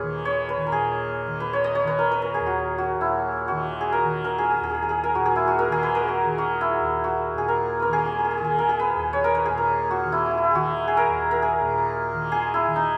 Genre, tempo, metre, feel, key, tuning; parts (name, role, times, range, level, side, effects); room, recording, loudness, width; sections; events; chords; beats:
indian classical, Hindustani; 135 BPM; 4/4; straight; Eb raga bhairavi; A4 = 439 Hz
santur; melody; 0.0-13.0 s; Eb4 to Eb5; -24 LUFS; equal
tanpura; drone; 0.0-13.0 s; Eb2 to Eb3; -34 LUFS; equal
moderate scoring stage reverb, RT60 2.0 s; -23 LUFS; mono
0.7-13.0 A section
speeding up 0.0-13.0
0.27 | 0.73 1.19 1.64 2.10 | 2.56 3.01 3.46 3.92 | 4.37 4.82 5.27 5.72 | 6.16 6.61 7.05 7.50 | 7.94 8.38 8.82 9.26 | 9.70 10.14 10.58 11.01 | 11.45 11.88 12.31 12.74